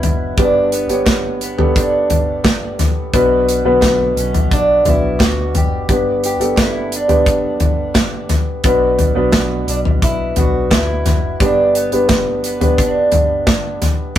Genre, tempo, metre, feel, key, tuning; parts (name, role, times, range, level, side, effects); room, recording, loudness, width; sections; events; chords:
piano-driven pop; 87 BPM; 4/4; straight; A4 = 441 Hz
lap resonator guitar; melody; 0.0-13.8 s; B3 to G4; -19 LUFS; right 2 dB
warm baby grand piano; accompaniment; 0.0-14.2 s; G2 to D5; -17 LUFS; left 1 dB
vintage muted fingered electric bass; bass; 0.0-14.2 s; F#1 to D2; -25 LUFS; equal
modern studio drum kit; drums; 0.0-14.2 s; hi-hat, kick drum, snare drum, toms; -16 LUFS; equal
group handclap; percussion; 1.1-13.6 s; -33 LUFS; right 3 dB
moderate small room reverb, RT60 0.5 s; rough rehearsal-room recording; -13 LUFS; side -11 dB against mid
0.0-14.2 A section
0.4 G; 3.1 Bm; 5.9 G; 8.6 Bm; 11.4 G